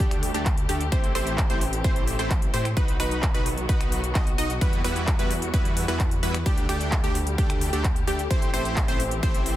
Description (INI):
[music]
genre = EDM, festival progressive house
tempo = 130 BPM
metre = 4/4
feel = straight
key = unclear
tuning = A4 = 440 Hz
[part]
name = muted studio string section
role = sustained chords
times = 0.0-9.6 s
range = D3 to G4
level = -34 LUFS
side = left 2 dB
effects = sidechain pumping
[part]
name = wide unison pluck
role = arpeggios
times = 0.0-9.5 s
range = G4 to D#5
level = -33 LUFS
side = right 1 dB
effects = sidechain pumping, dub echo
[part]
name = supersaw stab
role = riff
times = 0.0-9.5 s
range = G3 to D#5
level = -30 LUFS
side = equal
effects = sidechain pumping, dub echo
[part]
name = wide detuned saw bass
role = bass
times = 0.0-9.6 s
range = A1 to A2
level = -30 LUFS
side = equal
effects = chorus, sidechain pumping
[part]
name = big-room dance drum kit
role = drums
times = 0.0-9.6 s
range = finger snaps, handclaps, hi-hat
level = -32 LUFS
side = equal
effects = overdrive
[part]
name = electronic kick drum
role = drums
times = 0.0-9.3 s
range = none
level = -24 LUFS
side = equal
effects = overdrive
[part]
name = downlifter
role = sound effects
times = 0.0-0.9 s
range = none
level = barely audible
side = none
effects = none
[sound]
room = little or no reverb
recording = dense, heavily limited modern master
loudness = -22 LUFS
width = side -14 dB against mid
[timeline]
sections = 0.0-9.6 A section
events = none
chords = 0.0 Dsus4; 0.9 Am7; 2.8 B; 4.6 Emadd9; 6.5 Dsus4; 8.3 Am7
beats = 0.00 0.46 | 0.92 1.38 1.84 2.31 | 2.77 3.23 3.69 4.15 | 4.61 5.08 5.54 6.00 | 6.46 6.92 7.38 7.84 | 8.31 8.77 9.23